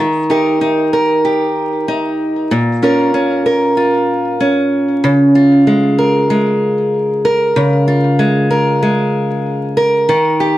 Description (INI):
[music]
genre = folktronica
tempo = 95 BPM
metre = 4/4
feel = straight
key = Db lydian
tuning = A4 = 445 Hz
[part]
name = fingerpicked old ladder-braced acoustic guitar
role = solo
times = 0.0-10.6 s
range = Bb2 to Bb4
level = -11 LUFS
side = equal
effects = none
[sound]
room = moderate studio reverb, RT60 0.6 s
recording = vinyl crackle, faint mains hum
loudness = -11 LUFS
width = side -15 dB against mid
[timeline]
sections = 0.0-5.0 A section; 5.0-10.6 B section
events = none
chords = 0.0 Eb; 2.5 Bbm; 5.0 Db6